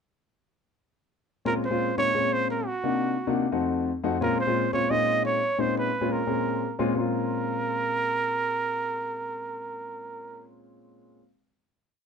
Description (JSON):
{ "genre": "jazz", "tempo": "174 BPM", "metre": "4/4", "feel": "straight", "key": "Bb minor", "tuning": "A4 = 440 Hz", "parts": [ { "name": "warm trumpet", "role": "melody", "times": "1.5-10.5 s", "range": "Gb4 to Eb5", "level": "-27 LUFS", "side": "right 3 dB", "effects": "none" }, { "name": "warm grand piano", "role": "accompaniment", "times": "1.5-11.2 s", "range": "F2 to Ab4", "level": "-27 LUFS", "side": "left 3 dB", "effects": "none" } ], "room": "light reverb", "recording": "close, detailed microphones", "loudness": "-24 LUFS", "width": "side -6 dB against mid", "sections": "1.5-7.0 A section; 7.0-9.7 final chord", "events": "none", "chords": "1.5 Bbm9; 2.8 Cm7b5; 3.5 F7b9; 4.2 Bbm9" }